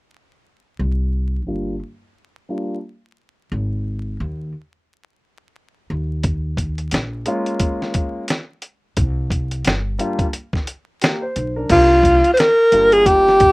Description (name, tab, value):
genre	hip hop, jazz-hop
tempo	88 BPM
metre	4/4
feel	swing 59% on 16ths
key	C minor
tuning	A4 = 435 Hz
part	upright bass	bass	0.8-13.5 s	G1 to Eb2	-22 LUFS	equal	none
part	dark grand piano	accompaniment	1.5-2.8, 7.3-13.5 s	G3 to C5	-24 LUFS	equal	low-pass filter
part	dusty soul sampler-style drum kit	drums	6.2-13.5 s	crash cymbal, hi-hat, kick drum, snare drum	-20 LUFS	equal	none
part	breathy alto saxophone	melody	11.7-13.5 s	F4 to C5	-10 LUFS	equal	none
room	moderate studio ambience, RT60 0.5 s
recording	rough home demo mix, vinyl crackle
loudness	-16 LUFS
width	side -25 dB against mid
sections	0.8-11.7 A section; 11.7-13.5 B section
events	filter sweep on grand piano 0.8-11.7; break 3.5-6.2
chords	0.8 C9sus4; 3.5 Ab5; 5.9 Eb9sus4; 9.0 C7sus2; 11.7 C9sus4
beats	| 0.79 1.47 2.15 2.84 | 3.52 4.20 4.88 5.56 | 6.25 6.93 7.61 8.29 | 8.97 9.65 10.34 11.02 | 11.70 12.38 13.06